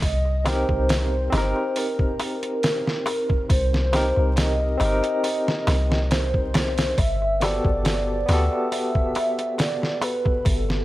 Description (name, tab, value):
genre	trip hop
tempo	69 BPM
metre	4/4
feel	swing 54% on 16ths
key	unclear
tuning	A4 = 441 Hz
part	pure breathy sine lead	melody	0.0-10.8 s	A4 to E5	-26 LUFS	equal	analog chorus, tape echo
part	soft 808-style bass	bass	0.0-10.8 s	G1 to D2	-23 LUFS	equal	none
part	trip hop sampler-style drum kit	drums	0.0-10.8 s	hi-hat, kick drum, snare drum	-24 LUFS	equal	none
part	darbuka	percussion	0.0-10.8 s	none	-32 LUFS	left 1 dB	none
part	barky tine electric piano	accompaniment	0.4-10.8 s	B3 to Bb4	-27 LUFS	equal	overdrive, tremolo, low-pass filter
room	digital ambience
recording	vinyl crackle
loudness	-20 LUFS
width	side -16 dB against mid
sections	0.0-10.8 A section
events	none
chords	0.0 Cm7; 7.0 Gmaj9